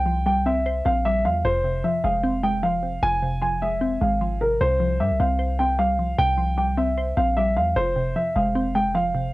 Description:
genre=hip hop, trap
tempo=152 BPM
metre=4/4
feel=half-time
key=F harmonic minor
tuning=A4 = 439 Hz
part: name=dark concert grand piano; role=melody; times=0.0-9.3 s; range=Bb4 to Ab5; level=-22 LUFS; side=equal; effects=low-pass filter, cassette tape
part: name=glassy wavetable pluck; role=accompaniment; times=0.0-9.3 s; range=F2 to C5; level=-26 LUFS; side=left 1 dB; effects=chorus, low-pass filter
part: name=warm 808-style bass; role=bass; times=0.0-9.3 s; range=F1 to G2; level=-26 LUFS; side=equal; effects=none
room=light reverb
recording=home recording on cassette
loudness=-20 LUFS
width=side -19 dB against mid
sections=0.0-1.4 A section; 1.4-9.3 B section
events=none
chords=0.0 Csus4; 1.4 Fm; 4.6 Csus4; 7.8 Fm

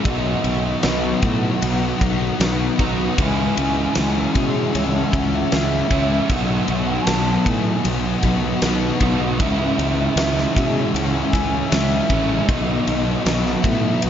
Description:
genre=rock, shoegaze and dream pop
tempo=77 BPM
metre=4/4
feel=straight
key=unclear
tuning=A4 = 440 Hz
part: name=breathy mellow jazz flute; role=melody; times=0.0-14.1 s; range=D#5 to A5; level=-28 LUFS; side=right 1 dB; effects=digital delay
part: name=granular cloud pad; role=sustained chords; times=0.0-14.1 s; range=B4 to E6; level=-32 LUFS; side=left 1 dB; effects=built-in reverb
part: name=picked twelve-string acoustic guitar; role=arpeggios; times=0.0-14.1 s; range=D#3 to G#4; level=-31 LUFS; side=left 4 dB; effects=none
part: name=overdriven semi-hollow guitar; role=riff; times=0.0-14.1 s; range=B2 to F#4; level=-24 LUFS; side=right 6 dB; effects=reverse reverb
part: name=thick fuzz guitar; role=riff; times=0.0-14.1 s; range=B2 to C#4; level=-23 LUFS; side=left 6 dB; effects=distortion, analog chorus
part: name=fuzz fingered electric bass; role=bass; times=0.1-14.1 s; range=A1 to B2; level=-24 LUFS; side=equal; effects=overdrive
part: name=huge arena drum kit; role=drums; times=0.1-14.1 s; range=kick drum, ride cymbal, snare drum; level=-23 LUFS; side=equal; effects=none
room=moderate echo chamber reverb, RT60 2.2 s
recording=nothing above 7.5 kHz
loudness=-17 LUFS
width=side -9 dB against mid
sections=0.0-14.1 A section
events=none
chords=0.1 B; 3.2 C#m; 6.3 B; 9.4 C#m; 12.5 B

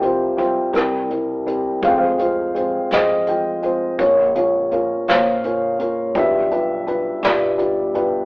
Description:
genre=acoustic folk-pop ballad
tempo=56 BPM (dotted quarters)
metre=6/8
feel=straight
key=F minor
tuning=A4 = 440 Hz
part: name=felt-muted upright piano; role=melody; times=0.0-8.2 s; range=F1 to G5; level=-16 LUFS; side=equal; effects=none
part: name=upright bass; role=bass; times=0.0-8.2 s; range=Bb1 to F3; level=-32 LUFS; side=equal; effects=none
part: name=soft brush drum kit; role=drums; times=0.0-8.1 s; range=hi-hat, kick drum, rim click, snare drum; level=-23 LUFS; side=equal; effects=none
room=moderate large studio reverb, RT60 1.0 s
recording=band playing live in one room, telephone sound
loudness=-16 LUFS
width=side -27 dB against mid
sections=0.0-1.8 A section; 1.8-8.2 B section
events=none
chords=0.0 C7sus4; 1.8 Fm; 4.0 Bbmadd9; 6.2 G7/B

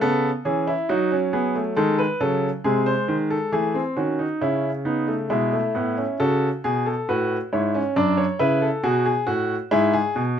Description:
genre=classical, baroque-style 3-part fugue for grand piano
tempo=68 BPM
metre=4/4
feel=straight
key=A major from 6.2 s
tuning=A4 = 439 Hz
part: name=clear baby grand piano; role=solo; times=0.0-10.4 s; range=F#2 to D5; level=-20 LUFS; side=equal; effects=none
room=light reverb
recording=minimal, uncompressed stereo recording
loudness=-20 LUFS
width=side -8 dB against mid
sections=0.0-6.2 A section; 6.2-10.4 B section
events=none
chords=0.0 C#m; 0.9 D#dim/F#; 2.6 G#/B#; 4.4 C#m; 6.2 A; 8.0 Bm/F#; 9.7 E/G#

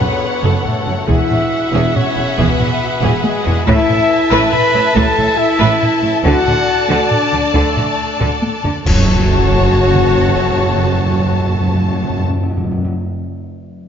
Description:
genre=cinematic, epic orchestral film score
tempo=139 BPM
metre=3/4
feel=straight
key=F# minor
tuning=A4 = 440 Hz
part: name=warm symphonic violin section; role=melody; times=0.0-12.2 s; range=F#5 to A5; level=-23 LUFS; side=left 4 dB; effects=none
part: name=warm symphonic violin section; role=second line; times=0.0-12.2 s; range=C#5 to E5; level=-23 LUFS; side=left 2 dB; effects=none
part: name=warm symphonic viola section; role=accompaniment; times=0.0-12.2 s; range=C#4 to B4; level=-24 LUFS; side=equal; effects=none
part: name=mellow French horn section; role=sustained chords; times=0.0-12.2 s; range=G#3 to B4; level=-19 LUFS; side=left 3 dB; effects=none
part: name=rich symphonic string section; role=sustained chords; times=0.0-12.2 s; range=D4 to A5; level=-26 LUFS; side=left 3 dB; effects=none
part: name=mellow trumpet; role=stabs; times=0.0-12.2 s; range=F#4 to B5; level=-21 LUFS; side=right 1 dB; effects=none
part: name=rich symphonic cello section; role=bass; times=0.0-12.2 s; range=E2 to D3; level=-21 LUFS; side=right 3 dB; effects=none
part: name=warm symphonic double bass section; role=bass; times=0.0-12.2 s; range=E1 to D2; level=-20 LUFS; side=right 4 dB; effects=none
part: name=taiko ensemble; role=drums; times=0.0-10.1 s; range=none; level=-20 LUFS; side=equal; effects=none
part: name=clash cymbals and concert bass drum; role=percussion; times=8.9-9.7 s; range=none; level=-24 LUFS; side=equal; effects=none
part: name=timpani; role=percussion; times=8.9-12.9 s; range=F#2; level=-18 LUFS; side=equal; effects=none
part: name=sub drop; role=sound effects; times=9.1-10.2 s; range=none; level=-25 LUFS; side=equal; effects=none
room=wet scoring stage reverb, RT60 1.9 s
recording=nothing above 7.6 kHz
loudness=-12 LUFS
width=side -8 dB against mid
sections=0.0-8.9 A section; 8.9-11.5 B section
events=drum fill 3.0-3.7, 8.2-8.9; band accent 8.9-9.3; impact 8.9-10.2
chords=0.0 F#m; 1.1 Eadd9; 3.7 Asus2; 6.2 D; 8.9 F#m

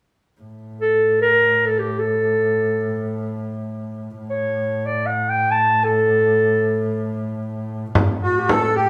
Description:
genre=Turkish makam ensemble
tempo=free time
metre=none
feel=none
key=A makam hicaz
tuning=A4 = 440 Hz
part: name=rich double bass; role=drone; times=0.4-8.9 s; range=A2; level=-29 LUFS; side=equal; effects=none
part: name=mellow clarinet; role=melody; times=0.8-8.9 s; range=F#4-45c to A5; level=-20 LUFS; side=equal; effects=none
part: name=frame drum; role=percussion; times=8.0-8.6 s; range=none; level=-21 LUFS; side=equal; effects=none
part: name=accordion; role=second line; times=8.2-8.9 s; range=F#4-40c to A4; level=-21 LUFS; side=equal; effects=light tremolo tuning
room=wet large studio reverb, RT60 1.0 s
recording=band playing live in one room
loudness=-20 LUFS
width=mono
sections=0.4-8.0 A section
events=none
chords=none

